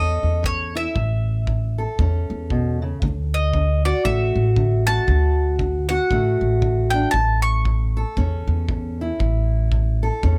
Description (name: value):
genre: acoustic country blues, solo or duo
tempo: 116 BPM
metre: 4/4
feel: swing 60% on 8ths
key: A major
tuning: A4 = 438 Hz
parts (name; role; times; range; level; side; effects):
- bowl-back mandolin; melody; 0.0-9.5 s; C#5 to C#6; -27 LUFS; equal; none
- fingerpicked steel-string acoustic guitar; accompaniment; 0.0-10.4 s; A2 to A4; -27 LUFS; equal; none
- upright bass; bass; 0.0-10.4 s; A1 to E2; -23 LUFS; equal; none
- kick drum; drums; 0.4-10.4 s; none; -29 LUFS; equal; none
room: light reverb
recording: none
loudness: -21 LUFS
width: mono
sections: 0.0-10.4 A section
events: none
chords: 0.0 A; 3.0 D; 7.1 A